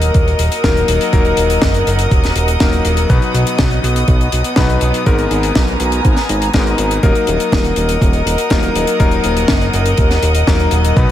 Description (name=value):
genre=italo disco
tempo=122 BPM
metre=4/4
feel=straight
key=Eb minor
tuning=A4 = 442 Hz
part: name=rich chamber string section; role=sustained chords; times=0.0-11.1 s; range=B3 to Eb6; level=-18 LUFS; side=equal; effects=none
part: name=bright electric grand piano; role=stabs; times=0.0-11.1 s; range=Ab2 to B4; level=-19 LUFS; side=left 4 dB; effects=ping-pong delay
part: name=fat analog bass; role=bass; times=0.0-11.1 s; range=Eb1 to B1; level=-16 LUFS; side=equal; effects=none
part: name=tight funk drum kit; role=drums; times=0.0-11.1 s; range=hi-hat, snare drum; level=-20 LUFS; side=left 2 dB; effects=none
part: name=electronic kick drum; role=drums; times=0.1-11.1 s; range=none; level=-14 LUFS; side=equal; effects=none
room=light reverb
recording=none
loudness=-11 LUFS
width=side -12 dB against mid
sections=0.0-11.1 A section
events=none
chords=0.0 Ebm; 3.1 B; 5.1 Abmadd9; 7.0 Ebm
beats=0.15 0.64 | 1.13 1.62 2.11 2.60 | 3.10 3.59 4.08 4.57 | 5.06 5.56 6.05 6.54 | 7.03 7.52 8.02 8.51 | 9.00 9.49 9.98 10.47 | 10.96